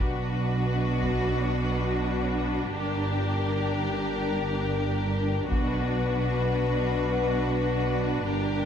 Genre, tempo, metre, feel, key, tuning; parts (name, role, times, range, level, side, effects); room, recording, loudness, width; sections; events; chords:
cinematic, epic orchestral film score; free time; B harmonic minor; A4 = 440 Hz
rich symphonic violin section; melody; 0.0-8.7 s; Bb4 to B4; -37 LUFS; left 5 dB
rich symphonic violin section; second line; 0.0-8.7 s; F#4 to G4; -33 LUFS; left 3 dB
warm symphonic viola section; accompaniment; 0.0-8.7 s; D4; -34 LUFS; right 1 dB
mellow French horn section; sustained chords; 0.0-8.7 s; D4 to B4; -32 LUFS; left 4 dB
rich symphonic cello section; bass; 0.0-8.7 s; G2 to B2; -31 LUFS; right 2 dB
rich symphonic double bass section; bass; 0.0-8.7 s; G1 to B1; -30 LUFS; right 2 dB
taiko ensemble; drums; 0.0-1.3, 5.5-6.9 s; -31 LUFS; equal
moderate scoring stage reverb, RT60 1.5 s; -24 LUFS; side -8 dB against mid
0.0-8.7 A section
build-up 0.0-8.7
0.0 Bm; 2.8 Gm; 5.5 Bm